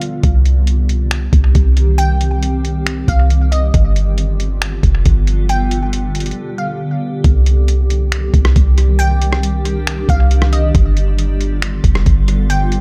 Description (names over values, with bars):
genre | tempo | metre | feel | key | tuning
hip hop, atmospheric cloud-rap | 137 BPM | 4/4 | half-time | C harmonic minor | A4 = 440 Hz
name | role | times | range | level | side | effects
glassy wavetable pluck | melody | 0.0-12.8 s | Eb5 to G5 | -26 LUFS | equal | chorus, analog delay
granular cloud pad | sustained chords | 0.0-12.8 s | D3 to G4 | -25 LUFS | equal | built-in reverb, sidechain pumping
lo-fi sampler-style drum kit | drums | 0.0-12.8 s | finger snaps, hi-hat, kick drum, rim click | -19 LUFS | equal | overdrive
soft 808-style bass | bass | 0.2-12.8 s | F1 to C2 | -16 LUFS | equal | none
room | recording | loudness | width
digital ambience | echo-heavy mix | -14 LUFS | mono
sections
0.0-7.2 A section; 7.2-12.8 B section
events
break 0.0, 6.4-7.2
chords
0.2 Cm; 3.7 G7; 7.2 Cm; 10.7 G7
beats
| 0.24 0.67 1.11 1.55 | 1.99 2.43 2.86 3.30 | 3.74 4.18 4.62 5.05 | 5.49 5.93 6.37 6.80 | 7.24 7.68 8.12 8.56 | 8.99 9.43 9.87 10.31 | 10.75 11.19 11.62 12.06 | 12.50